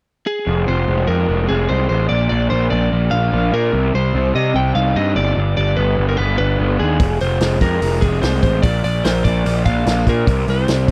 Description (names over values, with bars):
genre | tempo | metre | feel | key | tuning
classic rock | 147 BPM | 4/4 | straight | unclear | A4 = 440 Hz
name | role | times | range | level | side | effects
lightly driven lead guitar | melody | 0.3-10.9 s | Ab4 to G5 | -23 LUFS | equal | slapback echo
raw garage guitar | riff | 0.5-10.9 s | F2 to Eb4 | -25 LUFS | equal | overdrive
fuzz picked electric bass | bass | 0.5-10.9 s | F1 to C3 | -20 LUFS | equal | overdrive
vintage drum kit | drums | 7.0-10.9 s | hi-hat, kick drum, snare drum | -21 LUFS | equal | none
room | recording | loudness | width
little or no reverb | dry, close 1970s-style studio recording | -17 LUFS | mono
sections
0.5-10.9 A section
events
none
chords
0.5 Fm; 2.1 Bb; 3.7 Cm; 5.4 G; 7.0 Fm; 8.6 Bb; 10.3 C5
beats
0.07 | 0.47 0.88 1.29 1.70 | 2.10 2.51 2.92 3.33 | 3.73 4.14 4.55 4.96 | 5.37 5.78 6.19 6.59 | 7.00 7.41 7.82 8.23 | 8.64 9.05 9.46 9.86 | 10.27 10.68